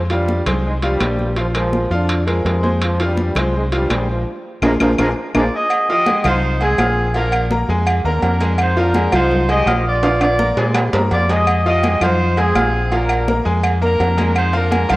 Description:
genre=latin, salsa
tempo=166 BPM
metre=4/4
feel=straight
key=unclear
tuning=A4 = 440 Hz
part: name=bright upright piano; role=accompaniment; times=0.0-15.0 s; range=F3 to F6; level=-21 LUFS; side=equal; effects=none
part: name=deep dub fingered electric bass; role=bass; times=0.0-15.0 s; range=Bb1 to Bb2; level=-19 LUFS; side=equal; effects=none
part: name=warm trombone section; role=melody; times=0.1-5.4 s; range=G2 to F4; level=-23 LUFS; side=equal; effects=cassette tape
part: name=congas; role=percussion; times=0.1-15.0 s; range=none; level=-25 LUFS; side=left 1 dB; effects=none
part: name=timbales and agogo bells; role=percussion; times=0.1-15.0 s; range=none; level=-22 LUFS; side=right 2 dB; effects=none
part: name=claves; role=percussion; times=0.5-15.0 s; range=none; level=-29 LUFS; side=left 3 dB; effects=none
part: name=mellow horn section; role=melody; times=5.4-15.0 s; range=C4 to Eb5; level=-19 LUFS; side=equal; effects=cassette tape
room=moderate lush hall reverb, RT60 2.4 s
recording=home recording on cassette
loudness=-14 LUFS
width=side -19 dB against mid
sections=0.0-5.7 A section; 5.7-15.0 B section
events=band accent 4.3-5.7; drum fill 4.6-5.7, 10.0-11.5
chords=0.0 Fm; 4.3 Bb5; 5.7 Fm7; 7.1 Bb7; 8.6 Fm7; 10.0 Bb7; 11.5 Fm7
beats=0.29 0.65 1.01 | 1.37 1.74 2.10 2.46 | 2.82 3.18 3.54 3.90 | 4.26 4.62 4.98 5.34 | 5.71 6.07 6.43 6.79 | 7.15 7.51 7.87 8.23 | 8.59 8.95 9.31 9.67 | 10.03 10.39 10.75 11.11 | 11.47 11.83 12.19 12.55 | 12.92 13.28 13.64 14.00 | 14.36 14.72

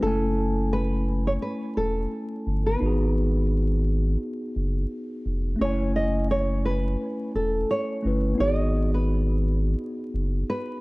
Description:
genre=lo-fi hip hop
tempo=86 BPM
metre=4/4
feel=swing 56% on 16ths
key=F# dorian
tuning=A4 = 440 Hz
part: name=nylon-string guitar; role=melody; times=0.0-10.8 s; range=A4 to D#5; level=-28 LUFS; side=right 1 dB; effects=low-pass filter
part: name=mellow tine electric piano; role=accompaniment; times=0.0-10.8 s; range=A3 to G#5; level=-28 LUFS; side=left 1 dB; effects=medium stereo tremolo, cassette tape, low-pass filter
part: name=round analog bass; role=bass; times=0.0-10.4 s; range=E1 to G#1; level=-24 LUFS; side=equal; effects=none
room=light reverb, small room ambience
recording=dark, warm production, vinyl crackle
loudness=-23 LUFS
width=side -22 dB against mid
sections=0.0-10.8 A section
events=none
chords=0.0 F#m7; 2.8 G#m7; 5.6 F#m7; 8.4 G#m7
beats=| 0.01 0.71 1.41 2.11 | 2.80 3.50 4.20 4.90 | 5.59 6.29 6.99 7.69 | 8.39 9.08 9.78 10.48

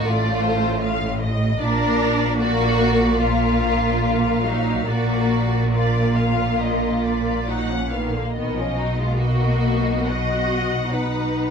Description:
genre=classical, slow romantic movement for string orchestra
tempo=66-78 BPM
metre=4/4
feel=rubato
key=unclear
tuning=A4 = 440 Hz
part: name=rich symphonic violin section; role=melody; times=0.0-11.5 s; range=C5 to Gb5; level=-29 LUFS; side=left 3 dB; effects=none
part: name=rich symphonic violin section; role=second line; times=0.0-11.5 s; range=Bb3 to D#5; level=-25 LUFS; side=left 3 dB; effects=none
part: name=warm symphonic viola section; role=accompaniment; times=0.0-11.5 s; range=D3 to F#4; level=-24 LUFS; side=left 1 dB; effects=none
part: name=rich symphonic cello section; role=bass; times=0.0-11.5 s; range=A2 to B2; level=-25 LUFS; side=right 4 dB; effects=none
part: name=warm symphonic double bass section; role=bass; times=0.0-11.5 s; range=A1 to B1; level=-24 LUFS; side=right 1 dB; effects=none
room=light reverb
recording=dark, warm production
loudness=-18 LUFS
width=side -6 dB against mid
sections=0.0-11.5 A section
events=none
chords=0.1 F7/A; 1.6 Bb; 8.3 Bmaj7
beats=0.05 0.83 | 1.61 2.40 3.20 4.02 | 4.87 5.73 6.60 7.47 | 8.35 9.20 10.08 10.91

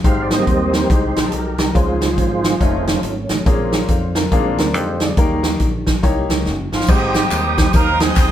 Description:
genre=uptempo gospel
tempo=140 BPM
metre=4/4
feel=swing 62% on 8ths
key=Ab major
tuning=A4 = 440 Hz
part: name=warm upright piano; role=accompaniment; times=0.0-7.5 s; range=Ab2 to F5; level=-22 LUFS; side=left 3 dB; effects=none
part: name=fingered electric bass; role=bass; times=0.0-8.3 s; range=Eb1 to F2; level=-23 LUFS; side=equal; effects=none
part: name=swinging big-band drum kit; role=drums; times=0.0-8.3 s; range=crash cymbal, hi-hat, kick drum, snare drum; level=-17 LUFS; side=equal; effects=none
part: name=tonewheel organ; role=sustained chords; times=0.1-8.3 s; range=Db3 to Eb6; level=-21 LUFS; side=right 2 dB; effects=overdrive, chorus vibrato, slow rotary speaker
part: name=mellow horn section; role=melody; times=6.7-8.3 s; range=F3 to Bb4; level=-19 LUFS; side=right 2 dB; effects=none
part: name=tambourine and handclaps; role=percussion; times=6.9-8.3 s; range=none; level=-29 LUFS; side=left 4 dB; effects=none
room=light reverb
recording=band playing live in one room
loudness=-14 LUFS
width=side -11 dB against mid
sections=0.0-6.9 A section; 6.9-8.3 B section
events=tonewheel organ solo 0.0-6.9; drum fill 6.5-6.9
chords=0.0 Abmaj7; 1.8 Dbmaj7; 2.6 F7b13; 3.5 Bbm7; 4.3 Bb7; 5.2 Eb; 6.9 Abmaj7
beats=| 0.04 0.47 0.90 1.32 | 1.75 2.18 2.61 3.04 | 3.46 3.89 4.32 4.75 | 5.18 5.61 6.03 6.46 | 6.89 7.32 7.74 8.17

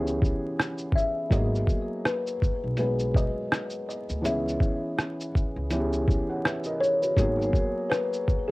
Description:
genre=lo-fi hip hop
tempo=82 BPM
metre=4/4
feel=swing 60% on 16ths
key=G# minor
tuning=A4 = 440 Hz
part: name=felt-muted upright piano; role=accompaniment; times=0.0-8.5 s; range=E3 to F#5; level=-30 LUFS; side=equal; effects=cassette tape, low-pass filter
part: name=upright bass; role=bass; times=0.0-7.5 s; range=G#1 to D2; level=-30 LUFS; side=equal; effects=none
part: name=lo-fi sampler-style drum kit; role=drums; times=0.1-8.5 s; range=hi-hat, kick drum, rim click, shaker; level=-26 LUFS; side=equal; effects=none
part: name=buzzing kalimba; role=melody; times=1.0-8.5 s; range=G#4 to E5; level=-29 LUFS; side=left 2 dB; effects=low-pass filter, cassette tape, tape echo
room=light reverb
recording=home recording on cassette, vinyl crackle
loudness=-24 LUFS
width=side -21 dB against mid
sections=0.0-8.5 A section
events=none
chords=0.0 C#m7; 1.3 G#m9; 4.2 C#m7; 7.2 G#m9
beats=0.58 | 1.31 2.04 2.77 3.50 | 4.24 4.97 5.70 6.43 | 7.16 7.89

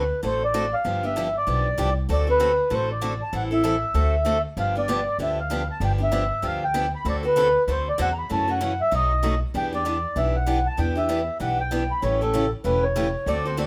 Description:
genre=acoustic string swing (jazz manouche)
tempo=193 BPM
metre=4/4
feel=swing 59% on 8ths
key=D mixolydian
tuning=A4 = 440 Hz
part: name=mellow accordion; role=melody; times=0.0-13.7 s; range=A4 to B5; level=-26 LUFS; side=equal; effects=none
part: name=picked steel-string acoustic guitar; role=accompaniment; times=0.0-13.7 s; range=B2 to A4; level=-30 LUFS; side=equal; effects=none
part: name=upright bass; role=bass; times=0.0-13.7 s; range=E1 to F#2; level=-29 LUFS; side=equal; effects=none
room=moderate studio reverb, RT60 0.8 s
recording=none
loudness=-23 LUFS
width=mono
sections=0.0-13.7 A section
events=none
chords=0.0 D7; 0.8 G7; 2.1 D7; 3.3 Am7; 4.0 D7; 4.6 G7; 7.1 D7; 8.3 F#m7; 8.9 B7; 9.5 Em7; 12.0 A7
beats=0.23 0.54 | 0.85 1.16 1.47 1.78 | 2.09 2.40 2.71 3.02 | 3.33 3.64 3.95 4.26 | 4.57 4.88 5.19 5.50 | 5.81 6.12 6.43 6.75 | 7.05 7.37 7.68 7.99 | 8.30 8.61 8.92 9.23 | 9.54 9.85 10.16 10.47 | 10.78 11.09 11.40 11.71 | 12.03 12.34 12.65 12.96 | 13.27 13.58

